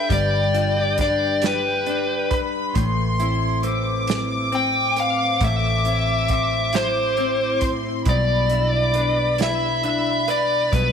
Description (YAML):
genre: six-eight pop ballad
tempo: 45 BPM (dotted quarters)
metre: 6/8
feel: straight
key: A minor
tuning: A4 = 443 Hz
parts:
  - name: dark smooth lead guitar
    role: melody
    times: 0.0-10.9 s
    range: B4 to G5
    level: -21 LUFS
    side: left 2 dB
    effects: overdrive, slapback echo
  - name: warm studio violin section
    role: second line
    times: 0.0-10.9 s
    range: G5 to D6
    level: -27 LUFS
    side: equal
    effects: slapback echo
  - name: direct-recorded clean electric guitar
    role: accompaniment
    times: 0.0-10.9 s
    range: A2 to B4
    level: -27 LUFS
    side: right 1 dB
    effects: double-tracked left and right
  - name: fingerpicked steel-string acoustic guitar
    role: arpeggios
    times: 0.0-10.9 s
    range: G3 to B4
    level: -31 LUFS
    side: left 9 dB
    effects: none
  - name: vintage muted fingered electric bass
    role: bass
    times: 0.0-10.9 s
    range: G1 to B1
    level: -25 LUFS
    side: right 1 dB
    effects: none
  - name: natural country drum kit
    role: drums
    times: 0.1-10.9 s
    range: hi-hat, kick drum, snare drum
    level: -26 LUFS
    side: right 3 dB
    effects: none
room: light reverb, small room ambience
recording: 1960s-style stereo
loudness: -18 LUFS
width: side -7 dB against mid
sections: 0.0-10.9 A section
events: none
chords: 0.0 G; 2.8 Amadd9; 8.1 Em7/B